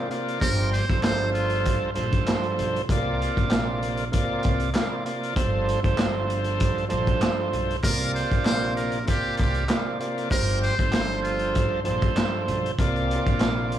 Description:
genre	hip hop, boom-bap hip-hop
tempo	97 BPM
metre	4/4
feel	swing 54% on 16ths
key	unclear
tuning	A4 = 440 Hz
part	overdriven tonewheel organ	accompaniment	0.0-13.8 s	G2 to D5	-26 LUFS	right 2 dB	slow rotary speaker
part	crunchy breakbeat drum kit	drums	0.1-13.8 s	handclaps, hi-hat, kick drum, snare drum	-26 LUFS	equal	none
part	trumpet with metal mute	melody	0.4-1.8, 7.8-11.7 s	F4 to C5	-30 LUFS	equal	tape echo
part	upright bass	bass	0.4-13.8 s	G1 to C2	-29 LUFS	equal	none
room	small room ambience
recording	dry, gritty hardware recording, studio ambience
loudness	-22 LUFS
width	side -11 dB against mid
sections	0.0-13.8 A section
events	none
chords	0.4 G9sus4; 2.9 C9sus4; 5.4 G9sus4; 7.8 C9sus4; 10.3 G9sus4; 12.8 C9sus4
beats	| 0.41 1.03 1.65 2.27 | 2.89 3.51 4.13 4.75 | 5.36 5.98 6.60 7.22 | 7.84 8.46 9.07 9.69 | 10.31 10.93 11.55 12.17 | 12.79 13.40

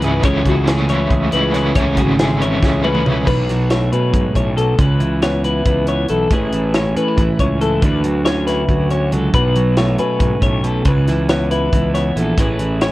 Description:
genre	math rock and midwest emo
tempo	277 BPM (eighths)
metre	7/8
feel	straight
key	A major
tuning	A4 = 440 Hz
part	twelve-string electric guitar	accompaniment	0.0-12.9 s	G#2 to G#4	-19 LUFS	right 2 dB	none
part	twelve-string electric guitar	arpeggios	0.0-12.9 s	F#4 to C#5	-21 LUFS	left 4 dB	none
part	crunchy overdriven guitar	riff	0.0-3.3 s	C#3 to E4	-20 LUFS	equal	tremolo
part	fuzz fingered electric bass	bass	0.0-12.9 s	G#1 to B2	-19 LUFS	equal	overdrive
part	crisp fusion drum kit	drums	0.0-12.9 s	crash cymbal, hi-hat, kick drum, snare drum, toms	-19 LUFS	equal	none
room	little or no reverb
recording	worn, warbling old tape, cassette tape, warbly pitch drift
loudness	-14 LUFS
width	side -17 dB against mid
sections	0.0-3.3 A section; 3.3-12.9 B section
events	drum fill 2.6-3.3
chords	0.2 Amaj7/C#; 3.3 B9sus4; 4.8 C#m7; 6.3 Amaj9; 7.8 Dmaj9; 9.3 Bsus2; 10.9 C#m7; 12.4 Amaj9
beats	0.03 | 0.24 0.46 0.68 0.90 1.11 1.33 1.55 | 1.76 1.98 2.20 2.41 2.63 2.85 3.06 | 3.28 3.50 3.71 3.93 4.15 4.37 4.58 | 4.80 5.02 5.23 5.45 5.67 5.88 6.10 | 6.32 6.53 6.75 6.97 7.18 7.40 7.62 | 7.83 8.05 8.27 8.48 8.70 8.92 9.13 | 9.35 9.56 9.78 10.00 10.21 10.43 10.65 | 10.86 11.08 11.30 11.51 11.73 11.94 12.16 | 12.38 12.59 12.81

